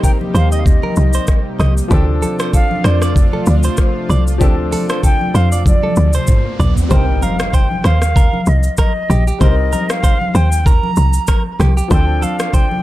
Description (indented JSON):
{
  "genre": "afrobeats",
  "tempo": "96 BPM",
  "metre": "4/4",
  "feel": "swing 55% on 16ths",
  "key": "C dorian",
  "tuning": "A4 = 441 Hz",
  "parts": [
    { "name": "concert flute", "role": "melody", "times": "0.0-12.8 s", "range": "C5 to Bb5", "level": "-22 LUFS", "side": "equal", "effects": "digital delay" },
    { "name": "clear concert grand piano", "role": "accompaniment", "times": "0.0-12.8 s", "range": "F3 to C5", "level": "-25 LUFS", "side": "left 3 dB", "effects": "none" },
    { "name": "lush unison pad", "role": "sustained chords", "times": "0.0-6.9 s", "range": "C3 to G4", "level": "-24 LUFS", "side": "equal", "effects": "chorus" },
    { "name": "direct-recorded clean electric guitar", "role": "riff", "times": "0.0-12.7 s", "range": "G4 to Eb5", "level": "-25 LUFS", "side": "right 6 dB", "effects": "none" },
    { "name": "afro-pop drum kit", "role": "drums", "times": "0.0-12.7 s", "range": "hi-hat, kick drum, rim click, shaker, toms", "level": "-14 LUFS", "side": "equal", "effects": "none" },
    { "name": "congas", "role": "percussion", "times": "0.0-12.8 s", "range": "none", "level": "-23 LUFS", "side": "left 2 dB", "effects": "none" },
    { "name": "woody log drum bass", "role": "bass", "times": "0.3-12.3 s", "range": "Bb1 to F2", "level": "-13 LUFS", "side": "equal", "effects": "none" },
    { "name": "riser and impact", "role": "sound effects", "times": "5.7-9.4 s", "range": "none", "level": "-27 LUFS", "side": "right 1 dB", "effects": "none" }
  ],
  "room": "digital ambience",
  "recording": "dark, warm production",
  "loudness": "-12 LUFS",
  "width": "side -16 dB against mid",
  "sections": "0.0-6.9 A section; 6.9-12.8 B section",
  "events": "drum fill 5.7-6.9; riser 5.7-6.9; impact 6.9-9.4",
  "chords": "0.0 Cm7; 1.9 Dm7; 6.9 Cm7; 11.9 Dm7"
}